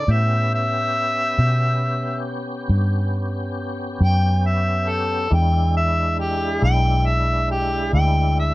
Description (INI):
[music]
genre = slow blues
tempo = 46 BPM (dotted quarters)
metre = 12/8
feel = straight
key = unclear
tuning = A4 = 441 Hz
[part]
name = mellow harmonica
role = melody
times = 0.0-8.5 s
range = G4 to G5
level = -22 LUFS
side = equal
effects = none
[part]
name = tonewheel organ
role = sustained chords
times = 0.0-8.5 s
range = G#3 to G4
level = -28 LUFS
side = equal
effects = overdrive, chorus vibrato, slow rotary speaker
[part]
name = vintage muted fingered electric bass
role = bass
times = 0.0-8.5 s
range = B1 to B2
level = -20 LUFS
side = equal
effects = none
[sound]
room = light reverb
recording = dark, warm production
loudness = -18 LUFS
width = side -18 dB against mid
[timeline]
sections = 0.0-8.5 A section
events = none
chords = 0.1 A9; 5.3 E7